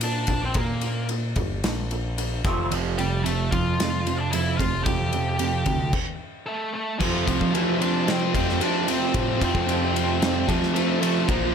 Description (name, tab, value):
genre	quiet-loud alternative rock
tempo	112 BPM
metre	4/4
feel	straight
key	unclear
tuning	A4 = 439 Hz
part	octave-fuzz lead guitar	melody	0.0-11.5 s	E3 to G5	-28 LUFS	left 1 dB	distortion
part	electric guitar through a small old amp	arpeggios	0.0-2.7 s	Bb2 to C4	-33 LUFS	right 1 dB	ensemble chorus
part	growling picked electric bass	bass	0.0-11.5 s	F1 to F3	-27 LUFS	left 1 dB	overdrive
part	loose indie drum kit	drums	0.0-11.4 s	crash cymbal, kick drum, ride cymbal, snare drum	-27 LUFS	left 1 dB	none
part	fuzz guitar	riff	2.7-11.5 s	F2 to Bb3	-26 LUFS	right 12 dB	distortion
part	cranked stack guitar	riff	7.0-11.5 s	Bb2 to F4	-28 LUFS	left 17 dB	overdrive
room	light reverb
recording	none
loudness	-21 LUFS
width	side -7 dB against mid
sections	0.0-7.0 A section; 7.0-11.5 B section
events	stop 5.9-7.0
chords	0.0 Bb; 2.4 Fadd9; 7.0 F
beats	0.02 | 0.56 1.10 1.64 2.18 | 2.72 3.25 3.79 4.33 | 4.87 5.41 5.94 6.48 | 7.01 7.55 8.08 8.62 | 9.15 9.68 10.22 10.75 | 11.28